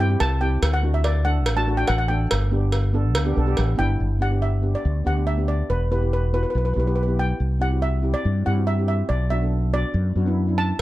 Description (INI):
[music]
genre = calypso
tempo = 142 BPM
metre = 4/4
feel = straight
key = G major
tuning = A4 = 440 Hz
[part]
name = steel pan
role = melody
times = 0.0-10.8 s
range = B4 to A5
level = -27 LUFS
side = equal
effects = plate reverb
[part]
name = steel pan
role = accompaniment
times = 0.0-10.8 s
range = A3 to A4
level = -28 LUFS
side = right 1 dB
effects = plate reverb
[part]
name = mellow fretless electric bass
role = bass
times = 0.0-10.8 s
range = E1 to G2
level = -21 LUFS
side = equal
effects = ensemble chorus
[part]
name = cowbell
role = percussion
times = 0.2-3.7, 10.8 s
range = none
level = -27 LUFS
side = right 2 dB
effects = none
[sound]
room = light reverb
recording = none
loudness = -19 LUFS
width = side -16 dB against mid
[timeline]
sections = 0.0-4.0 A section; 4.0-10.8 B section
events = none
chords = 0.0 C; 0.6 D; 2.3 G; 5.7 Emadd9; 7.4 C; 9.1 Bm